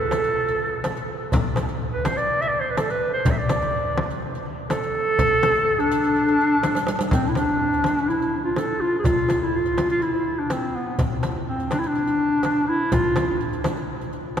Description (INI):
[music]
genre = Arabic maqam ensemble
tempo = 124 BPM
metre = 4/4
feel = straight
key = D minor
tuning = A4 = 440 Hz
[part]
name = breathy clarinet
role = melody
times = 0.0-13.4 s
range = B3 to E5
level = -21 LUFS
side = equal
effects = none
[part]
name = darbuka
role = percussion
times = 0.1-14.4 s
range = none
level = -29 LUFS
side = equal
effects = none
[part]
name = frame drum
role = percussion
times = 0.1-14.4 s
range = none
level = -27 LUFS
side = left 1 dB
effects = none
[part]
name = riq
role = percussion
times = 0.1-14.4 s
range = none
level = -37 LUFS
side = right 3 dB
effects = none
[sound]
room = wet cathedral reverb, RT60 4.9 s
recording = recorded in a church or concert hall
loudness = -20 LUFS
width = side -8 dB against mid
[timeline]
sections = 0.0-7.1 A section; 7.1-14.4 B section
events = drum fill 6.6-7.1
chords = none